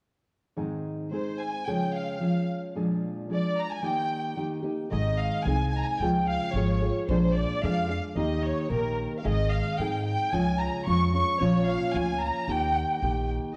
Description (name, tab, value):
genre	mexican folk, mariachi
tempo	111 BPM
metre	2/4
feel	straight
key	Ab major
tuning	A4 = 440 Hz
part	nylon-string guitar	accompaniment	0.6-13.6 s	Ab2 to Ab4	-31 LUFS	equal	none
part	rich chamber violin section	melody	1.1-13.3 s	Bb4 to Db6	-32 LUFS	equal	none
part	upright bass	bass	4.9-13.4 s	Ab1 to Ab2	-32 LUFS	equal	none
room	moderate recital hall reverb, RT60 1.8 s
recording	worn, warbling old tape, cassette tape, warbly pitch drift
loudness	-27 LUFS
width	mono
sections	0.6-4.9 A section; 4.9-13.6 B section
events	none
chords	0.6 Ab; 1.7 Db; 2.8 Bb7; 3.8 Eb; 4.9 Ab; 6.0 Db; 7.1 Bb7; 8.2 Eb; 9.2 Ab; 10.3 Db; 11.4 Bbm; 12.5 Eb